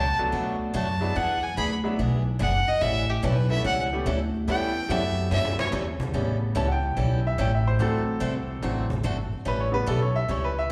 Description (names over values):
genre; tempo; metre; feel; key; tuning
country, western swing; 145 BPM; 4/4; swing 66% on 8ths; A mixolydian; A4 = 439 Hz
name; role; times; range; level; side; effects
clear fiddle; second line; 0.0-5.7 s; G4 to B5; -29 LUFS; equal; slapback echo
picked swing-style acoustic guitar; accompaniment; 0.0-10.7 s; B2 to A4; -34 LUFS; equal; slapback echo
upright bass; bass; 0.0-10.7 s; F#1 to G2; -29 LUFS; equal; none
bright upright piano; accompaniment; 0.2-10.7 s; C#3 to A5; -31 LUFS; equal; slapback echo
cajon; drums; 0.2-10.4 s; none; -40 LUFS; equal; none
room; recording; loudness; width
light reverb; live gig heard through the venue's PA, recital hall reverb; -25 LUFS; mono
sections
0.0-6.1 A section; 6.1-10.7 A section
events
fiddle solo 0.0-6.1; drum fill 5.3-5.7; upright piano solo 6.1-10.7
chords
0.0 Bm7; 1.2 E9; 2.8 A9; 7.8 D9; 9.5 A9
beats
0.33 0.75 | 1.16 1.58 1.99 2.41 | 2.82 3.24 3.65 4.07 | 4.48 4.90 5.31 5.73 | 6.14 6.55 6.97 7.38 | 7.80 8.21 8.63 9.04 | 9.46 9.88 10.29 10.71